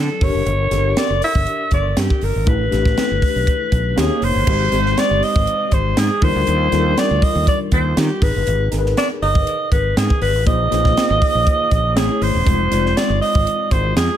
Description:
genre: polished 1980s jazz-funk pop.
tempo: 120 BPM.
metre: 4/4.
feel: swing 54% on 16ths.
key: unclear.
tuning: A4 = 436 Hz.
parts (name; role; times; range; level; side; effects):
growling alto saxophone; melody; 0.0-14.2 s; G4 to E5; -19 LUFS; equal; none.
tine electric piano; accompaniment; 0.0-14.2 s; F3 to D5; -23 LUFS; left 3 dB; medium stereo tremolo, ensemble chorus.
fretless electric bass; bass; 0.0-14.1 s; E1 to Eb3; -20 LUFS; equal; none.
crisp fusion drum kit; drums; 0.2-14.1 s; crash cymbal, hi-hat, kick drum, snare drum; -20 LUFS; right 1 dB; gated reverb.
room: studio reverb.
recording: none.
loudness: -14 LUFS.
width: side -10 dB against mid.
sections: 0.0-4.5 A section; 4.5-14.2 A section.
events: none.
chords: 0.2 Gm; 2.5 A9sus4; 4.0 Eb7; 4.5 Abmaj7; 6.2 Ebmaj9; 8.2 Abm; 10.5 Bb9sus4; 12.0 Amaj7; 12.5 Fm7.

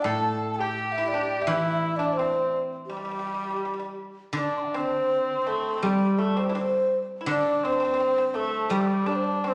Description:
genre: chinese traditional, Chinese chamber ensemble.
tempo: 83 BPM.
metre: 2/4.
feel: rubato.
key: G zhi mode.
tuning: A4 = 438 Hz.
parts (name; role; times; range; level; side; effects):
breathy mellow low xiao; melody; 0.0-9.5 s; G4 to C6; -30 LUFS; equal; none.
mellow cor anglais; second line; 0.0-9.5 s; G3 to D5; -32 LUFS; equal; none.
pipa; second line; 0.0-9.5 s; G3 to A4; -37 LUFS; equal; none.
guzheng; accompaniment; 0.0-9.5 s; A2 to G3; -31 LUFS; equal; none.
room: wet recital hall reverb, RT60 1.5 s.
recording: none.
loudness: -26 LUFS.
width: mono.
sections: 0.0-4.4 A section; 4.4-9.5 B section.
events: none.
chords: none.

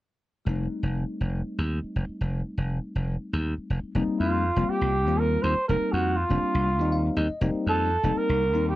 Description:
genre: electric jazz fusion.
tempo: 242 BPM (eighths).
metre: 7/8.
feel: straight.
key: F mixolydian.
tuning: A4 = 439 Hz.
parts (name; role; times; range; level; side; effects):
bell-like tine electric piano; accompaniment; 0.5-8.8 s; G3 to F5; -30 LUFS; left 3 dB; phaser.
slap bass; bass; 0.5-8.8 s; F1 to F2; -26 LUFS; equal; none.
trumpet with bucket mute; melody; 4.2-8.8 s; F4 to C5; -26 LUFS; right 2 dB; none.
room: light reverb.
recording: dry, close 1970s-style studio recording.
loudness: -24 LUFS.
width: side -16 dB against mid.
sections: 0.5-4.0 A section; 4.0-8.8 B section.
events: tine electric piano fill 6.7-7.4.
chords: 0.5 F9; 4.0 F9sus4.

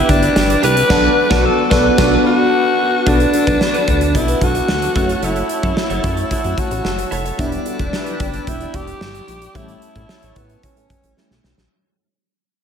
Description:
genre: 1980s-style pop.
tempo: 111 BPM.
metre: 4/4.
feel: straight.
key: B minor.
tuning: A4 = 438 Hz.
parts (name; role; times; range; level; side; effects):
breathy alto saxophone; melody; 0.0-11.4 s; B3 to B4; -18 LUFS; left 2 dB; analog delay.
FM electric piano; accompaniment; 0.0-11.7 s; G3 to B4; -21 LUFS; left 1 dB; chorus, phaser.
chorused pulse-width pad; sustained chords; 0.0-11.7 s; B4 to E6; -26 LUFS; right 1 dB; none.
direct-recorded clean electric guitar; riff; 0.0-7.4 s; D4 to C#5; -26 LUFS; right 4 dB; ensemble chorus, analog delay.
chorused synth bass; bass; 0.0-11.7 s; E1 to A2; -21 LUFS; equal; none.
big rock drum kit; drums; 0.1-11.7 s; crash cymbal, hi-hat, kick drum, snare drum, tambourine; -20 LUFS; equal; none.
mellow synth brass; stabs; 0.9-8.8 s; B3 to B4; -27 LUFS; right 2 dB; none.
room: wet lush hall reverb, RT60 2.0 s, small room ambience.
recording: dreamy mix soaked in reverb.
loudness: -13 LUFS.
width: side -7 dB against mid.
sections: 0.0-3.1 A section; 3.1-11.7 B section.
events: band accent 0.9-3.1; fade-out 3.1-11.7; drum fill 11.2-11.7.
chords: 0.0 Em7; 0.9 Bm7; 5.0 F#m7; 7.4 Em7; 9.6 A7.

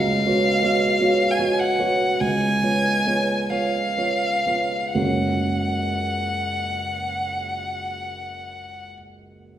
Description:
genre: classical, romantic duo for violin and grand piano.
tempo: 41-56 BPM.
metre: 4/4.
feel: rubato.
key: F# major.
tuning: A4 = 439 Hz.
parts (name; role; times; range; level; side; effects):
rich violin; melody; 0.0-8.9 s; E#5 to G#5; -23 LUFS; left 1 dB; none.
dark baby grand piano; accompaniment; 0.0-9.6 s; F#1 to C#5; -22 LUFS; right 2 dB; none.
room: wet recital hall reverb, RT60 1.9 s.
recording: heard from further back in the room.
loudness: -19 LUFS.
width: side -11 dB against mid.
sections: 0.0-4.9 A section; 4.9-9.6 B section.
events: slowing down 0.0-4.9.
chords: 0.0 C#7sus4; 2.2 C#7; 4.9 F#.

